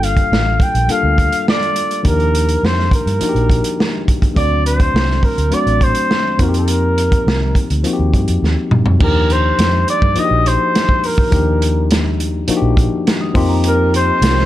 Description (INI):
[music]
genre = lush 1970s-style soul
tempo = 104 BPM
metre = 4/4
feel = straight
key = unclear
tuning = A4 = 440 Hz
[part]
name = warm flugelhorn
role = melody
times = 0.0-14.5 s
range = Bb4 to G5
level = -18 LUFS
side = equal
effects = none
[part]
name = tine electric piano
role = accompaniment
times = 0.0-14.5 s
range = F3 to A4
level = -20 LUFS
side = left 4 dB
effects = none
[part]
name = vintage muted fingered electric bass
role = bass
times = 0.0-14.5 s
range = G1 to G2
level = -17 LUFS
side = equal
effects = none
[part]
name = vintage drum kit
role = drums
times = 0.0-14.4 s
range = crash cymbal, hi-hat, kick drum, snare drum, toms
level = -17 LUFS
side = right 1 dB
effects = none
[part]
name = celesta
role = texture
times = 13.2-14.3 s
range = Bb5 to Eb6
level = -30 LUFS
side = right 3 dB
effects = none
[part]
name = string machine, violins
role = sustained chords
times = 13.6-14.5 s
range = F3 to Bb4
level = -26 LUFS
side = right 2 dB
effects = none
[sound]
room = small room reverb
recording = dark, warm production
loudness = -12 LUFS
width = side -14 dB against mid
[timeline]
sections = 0.0-9.0 A section; 9.0-14.5 B section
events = drum fill 8.4-9.0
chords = 0.0 Gm7; 2.1 Ebmaj7; 4.4 D7; 6.4 F7sus4; 9.0 Ebmaj7; 13.3 F7sus4